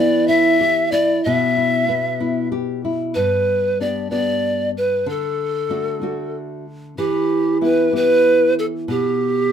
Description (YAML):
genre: andean folk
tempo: 63 BPM (dotted quarters)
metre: 6/8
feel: straight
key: E minor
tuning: A4 = 441 Hz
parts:
  - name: breathy bright polished pan flute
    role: melody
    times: 0.0-9.5 s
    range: G4 to E5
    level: -18 LUFS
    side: equal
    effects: none
  - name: nylon-string guitar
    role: accompaniment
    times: 0.0-9.5 s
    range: G2 to G4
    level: -21 LUFS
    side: left 1 dB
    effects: none
room: moderate small room reverb, RT60 0.5 s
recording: minimal, uncompressed stereo recording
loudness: -16 LUFS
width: side -8 dB against mid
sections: 0.0-3.2 A section; 3.2-9.5 B section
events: none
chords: 0.0 Em; 3.2 G; 5.1 D; 7.0 Em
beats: 0.26 | 1.23 2.19 | 3.15 4.11 | 5.07 6.03 | 6.98 7.94 | 8.89